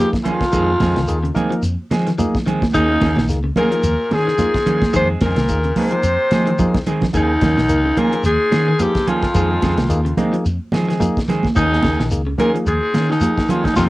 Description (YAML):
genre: afrobeat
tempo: 109 BPM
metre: 4/4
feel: swing 56% on 16ths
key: unclear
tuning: A4 = 443 Hz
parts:
  - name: raspy alto saxophone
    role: melody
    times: 0.0-13.8 s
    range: Eb4 to C5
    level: -19 LUFS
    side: left 1 dB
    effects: none
  - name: raspy baritone saxophone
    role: second line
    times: 0.0-13.8 s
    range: Eb2 to C3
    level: -27 LUFS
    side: left 2 dB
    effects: cassette tape
  - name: barky tine electric piano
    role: accompaniment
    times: 0.0-13.9 s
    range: Bb3 to Bb4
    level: -25 LUFS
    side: left 2 dB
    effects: overdrive, cassette tape
  - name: clean electric guitar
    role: arpeggios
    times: 0.0-13.9 s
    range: C3 to F3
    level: -26 LUFS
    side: left 2 dB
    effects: spring reverb, cassette tape
  - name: damped 70s drum kit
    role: drums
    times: 0.1-13.9 s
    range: hi-hat, kick drum, snare drum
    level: -24 LUFS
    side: equal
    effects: cassette tape
  - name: clean electric guitar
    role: stabs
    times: 0.2-13.9 s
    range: Eb3 to Ab4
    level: -24 LUFS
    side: right 4 dB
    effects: cassette tape
  - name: shekere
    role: percussion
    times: 0.2-13.9 s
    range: none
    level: -26 LUFS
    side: left 1 dB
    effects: none
  - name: congas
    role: percussion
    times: 0.3-13.9 s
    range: none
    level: -21 LUFS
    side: right 2 dB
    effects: none
  - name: fingered electric bass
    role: bass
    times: 0.5-13.9 s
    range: Bb1 to F3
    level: -20 LUFS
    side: equal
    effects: none
room: little or no reverb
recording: home recording on cassette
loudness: -15 LUFS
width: side -18 dB against mid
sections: 0.0-13.9 A section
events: drum fill 6.3-7.1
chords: 0.0 Eb7sus4; 0.5 Fm7; 2.7 Eb7sus4; 4.9 Fm7; 7.1 Eb7sus4; 9.3 Fm7; 11.6 Eb7sus4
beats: | 0.53 1.08 1.63 2.18 | 2.73 3.28 3.83 4.38 | 4.93 5.49 6.04 6.59 | 7.14 7.69 8.24 8.79 | 9.35 9.90 10.45 11.00 | 11.55 12.11 12.66 13.21 | 13.76